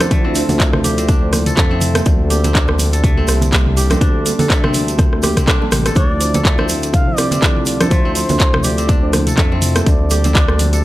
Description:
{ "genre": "afro house", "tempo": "123 BPM", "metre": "4/4", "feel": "swing 56% on 16ths", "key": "D minor", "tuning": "A4 = 440 Hz", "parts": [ { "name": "warm analog pad", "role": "sustained chords", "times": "0.0-10.8 s", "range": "D3 to A4", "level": "-26 LUFS", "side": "left 1 dB", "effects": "lush chorus, sidechain pumping" }, { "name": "kora", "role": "arpeggios", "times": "0.0-10.8 s", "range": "A3 to A4", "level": "-24 LUFS", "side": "left 1 dB", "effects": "sidechain pumping, tape echo" }, { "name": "deep mellow chord stab", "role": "stabs", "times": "0.0-10.8 s", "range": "F3 to C5", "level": "-25 LUFS", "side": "right 3 dB", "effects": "chorus, sidechain pumping, tape echo" }, { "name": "smooth synth bass", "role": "bass", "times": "0.0-10.8 s", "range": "A1 to F2", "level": "-18 LUFS", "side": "equal", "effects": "tube saturation, sidechain pumping" }, { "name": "afro-pop drum kit", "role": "drums", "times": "0.0-10.8 s", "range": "handclaps, hi-hat, rim click, toms", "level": "-19 LUFS", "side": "equal", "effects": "none" }, { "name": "congas", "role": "percussion", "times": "0.0-10.7 s", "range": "none", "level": "-24 LUFS", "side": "right 2 dB", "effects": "none" }, { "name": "tube shaker", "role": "percussion", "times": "0.0-10.8 s", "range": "none", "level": "-27 LUFS", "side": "right 4 dB", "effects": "none" }, { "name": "electronic kick drum", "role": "drums", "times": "0.1-10.5 s", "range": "none", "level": "-14 LUFS", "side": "equal", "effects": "none" }, { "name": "mellow bansuri", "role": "melody", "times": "6.0-10.8 s", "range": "C5 to F5", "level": "-23 LUFS", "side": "right 1 dB", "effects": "tape echo" } ], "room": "small room ambience", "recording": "dry, gritty hardware recording, transformer saturation", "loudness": "-12 LUFS", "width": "side -16 dB against mid", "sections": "0.0-10.8 A section", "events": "drum fill 5.0-6.0", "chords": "0.0 Dm7; 2.1 Gmadd9; 6.0 Dm7; 9.9 Gmadd9", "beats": "| 0.11 0.60 1.09 1.57 | 2.06 2.55 3.04 3.52 | 4.01 4.50 4.99 5.48 | 5.96 6.45 6.94 7.43 | 7.92 8.40 8.89 9.38 | 9.87 10.35 10.84" }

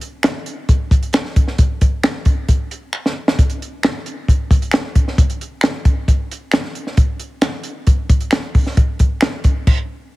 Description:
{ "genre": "soul", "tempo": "134 BPM", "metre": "4/4", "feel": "straight", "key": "none", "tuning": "none", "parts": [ { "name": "compact cocktail drum kit", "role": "drums", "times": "0.0-9.8 s", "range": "crash cymbal, hi-hat, kick drum, snare drum", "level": "-14 LUFS", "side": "equal", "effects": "none" }, { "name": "finger snap", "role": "percussion", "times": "0.2-9.3 s", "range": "none", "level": "-23 LUFS", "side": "equal", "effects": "none" } ], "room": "little or no reverb", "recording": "heavily compressed radio sound", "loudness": "-15 LUFS", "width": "side -20 dB against mid", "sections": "0.0-10.2 A section", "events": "drum fill 2.9-3.4; stop 9.7-10.2", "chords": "none", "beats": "0.24 0.69 1.14 | 1.59 2.04 2.48 2.93 | 3.38 3.83 4.28 4.73 | 5.18 5.63 6.08 6.53 | 6.98 7.43 7.88 8.32 | 8.77 9.22 9.67" }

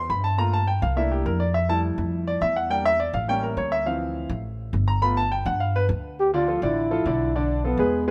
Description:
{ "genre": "latin, salsa", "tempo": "207 BPM", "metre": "4/4", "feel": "straight", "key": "unclear", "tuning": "A4 = 440 Hz", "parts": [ { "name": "clear grand piano", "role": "accompaniment", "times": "0.0-8.1 s", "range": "D3 to B5", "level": "-26 LUFS", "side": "equal", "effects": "none" }, { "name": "upright bass", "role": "bass", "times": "0.0-8.1 s", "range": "G1 to G2", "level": "-28 LUFS", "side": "equal", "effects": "none" }, { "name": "dark trombone", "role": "melody", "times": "6.2-8.1 s", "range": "B3 to G4", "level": "-25 LUFS", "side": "equal", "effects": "none" } ], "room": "light reverb", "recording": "none", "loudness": "-24 LUFS", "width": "mono", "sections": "0.0-6.2 A section; 6.2-8.1 B section", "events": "grand piano solo 0.0-6.2", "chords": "0.4 Gm9; 1.0 C13; 1.5 Fmaj9; 2.7 Em7b5; 3.3 A7b9; 3.9 Dm7; 5.0 G7; 6.2 Dmadd9; 7.3 Bm7b5", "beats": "0.10 | 0.39 0.68 0.97 1.26 | 1.55 1.84 2.13 2.42 | 2.71 3.00 3.29 3.58 | 3.87 4.16 4.45 4.74 | 5.03 5.32 5.61 5.90 | 6.19 6.48 6.77 7.06 | 7.35 7.64 7.93" }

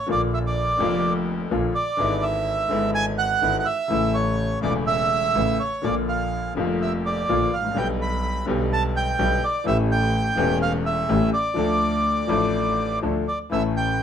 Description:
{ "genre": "tango", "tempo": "125 BPM", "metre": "4/4", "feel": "rubato", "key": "unclear", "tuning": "A4 = 441 Hz", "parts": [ { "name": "bandoneon", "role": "melody", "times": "0.0-14.0 s", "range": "C#5 to B5", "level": "-23 LUFS", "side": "right 3 dB", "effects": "none" }, { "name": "clear grand piano", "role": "accompaniment", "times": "0.1-14.0 s", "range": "E1 to A4", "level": "-24 LUFS", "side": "left 4 dB", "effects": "none" }, { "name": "clear double bass", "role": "bass", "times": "0.1-14.0 s", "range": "E1 to D2", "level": "-27 LUFS", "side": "right 1 dB", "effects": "none" } ], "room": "moderate studio reverb, RT60 0.7 s", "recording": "minimal, uncompressed stereo recording", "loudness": "-20 LUFS", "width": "side -8 dB against mid", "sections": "0.0-13.5 A section", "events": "none", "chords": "0.1 Bb; 2.0 E7/G#; 3.9 A; 5.8 Bb; 7.8 G/B; 9.7 A7; 11.6 Dm; 13.5 A", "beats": "| 0.09 0.56 1.04 1.51 | 1.99 2.47 2.94 3.42 | 3.90 4.38 4.87 5.36 | 5.84 6.33 6.81 7.29 | 7.77 8.24 8.72 9.19 | 9.66 10.14 10.61 11.09 | 11.57 12.05 12.54 13.03 | 13.52 14.00" }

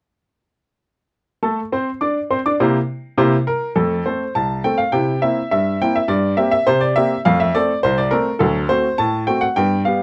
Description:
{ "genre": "ragtime piano", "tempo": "103 BPM", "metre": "2/4", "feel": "straight", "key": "F major", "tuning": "A4 = 440 Hz", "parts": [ { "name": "clear baby grand piano", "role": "solo", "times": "1.4-10.0 s", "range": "C2 to D6", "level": "-18 LUFS", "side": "equal", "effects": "none" } ], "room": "little or no reverb", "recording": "dry, close 1970s-style studio recording", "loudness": "-18 LUFS", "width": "mono", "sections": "1.4-3.8 A section; 3.8-10.0 B section", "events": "none", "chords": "1.4 Amadd11; 2.6 C7; 3.8 F; 4.9 C7; 6.1 C5/G; 7.3 F; 8.4 D7", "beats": "| 1.43 2.02 | 2.60 3.18 | 3.77 4.35 | 4.93 5.51 | 6.09 6.67 | 7.25 7.83 | 8.41 8.99 | 9.57" }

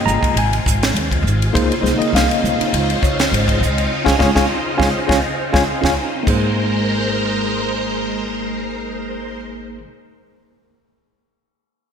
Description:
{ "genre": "electric jazz fusion", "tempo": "102 BPM", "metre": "4/4", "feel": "straight", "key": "Ab major", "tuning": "A4 = 440 Hz", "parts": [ { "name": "tine electric piano", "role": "accompaniment", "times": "0.0-9.8 s", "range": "Bb3 to Bb5", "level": "-20 LUFS", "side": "left 1 dB", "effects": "fast stereo tremolo" }, { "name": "string machine, violins", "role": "sustained chords", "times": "0.0-9.4 s", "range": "C3 to C5", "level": "-22 LUFS", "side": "equal", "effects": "phaser, ensemble chorus" }, { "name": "upright bass", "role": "bass", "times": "0.1-9.8 s", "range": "G1 to Eb2", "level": "-21 LUFS", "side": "equal", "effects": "none" }, { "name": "crisp fusion drum kit", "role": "drums", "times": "0.1-6.4 s", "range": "crash cymbal, hi-hat, kick drum, ride cymbal, snare drum", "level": "-20 LUFS", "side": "equal", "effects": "gated reverb" } ], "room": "moderate lush hall reverb, RT60 2.4 s", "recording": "bright 1980s-style digital production", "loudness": "-15 LUFS", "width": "side -7 dB against mid", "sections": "0.0-6.3 A section; 6.3-8.6 B section", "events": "band accent 3.9-6.3; drum fill 5.7-6.3", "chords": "0.0 Abadd9; 1.5 Dbmaj9; 6.3 Abadd9", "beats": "0.35 0.94 | 1.53 2.12 2.71 3.31 | 3.90 4.49 5.08 5.67 | 6.26 6.85 7.44 8.03" }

